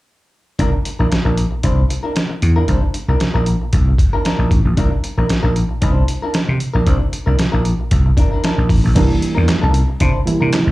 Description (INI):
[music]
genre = funk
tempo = 115 BPM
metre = 4/4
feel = straight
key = C mixolydian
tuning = A4 = 440 Hz
[part]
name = clean electric guitar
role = accompaniment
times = 0.6-10.7 s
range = D4 to C5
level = -23 LUFS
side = left 2 dB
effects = plate reverb, slapback echo
[part]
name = vintage slap bass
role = bass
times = 0.6-10.7 s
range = A1 to C3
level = -15 LUFS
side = equal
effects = none
[part]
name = trip hop sampler-style drum kit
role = drums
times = 0.6-10.7 s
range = crash cymbal, handclaps, hi-hat, kick drum, snare drum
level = -17 LUFS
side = equal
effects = none
[part]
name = reed electric piano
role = stabs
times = 9.0-10.7 s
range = E3 to E4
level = -18 LUFS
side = right 3 dB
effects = plate reverb
[sound]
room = light reverb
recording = live gig heard through the venue's PA, club reverb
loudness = -14 LUFS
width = side -18 dB against mid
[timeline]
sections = 0.6-9.0 A section; 9.0-10.7 B section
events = none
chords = 0.6 C9